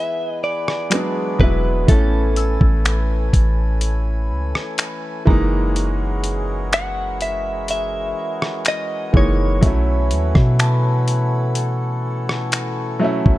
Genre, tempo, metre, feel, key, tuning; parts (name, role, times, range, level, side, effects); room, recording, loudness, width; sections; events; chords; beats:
contemporary R&B; 62 BPM; 4/4; straight; A4 = 440 Hz
direct-recorded clean electric guitar; melody; 0.0-12.0 s; A4 to F#5; -24 LUFS; equal; tape echo
warm baby grand piano; accompaniment; 0.0-13.4 s; E3 to E4; -23 LUFS; right 1 dB
pedal harmonium; sustained chords; 0.0-13.4 s; E3 to G#5; -27 LUFS; left 1 dB; sidechain pumping
soft synth bell; texture; 0.0-13.4 s; A5 to D#7; -34 LUFS; equal; chorus, tape echo
dusty soul sampler-style drum kit; drums; 0.7-13.4 s; finger snaps, hi-hat, kick drum, rim click; -17 LUFS; equal
warm 808-style bass; bass; 1.4-13.4 s; E1 to B2; -19 LUFS; equal
little or no reverb; dark, warm production; -16 LUFS; side -16 dB against mid
0.0-13.4 A section
0.0 C#m9 (rootless); 0.9 E9; 1.9 Amaj9; 5.3 F#13; 9.6 B9sus4
0.92 | 1.88 2.85 3.82 4.79 | 5.75 6.72 7.69 8.66 | 9.63 10.59 11.56 12.53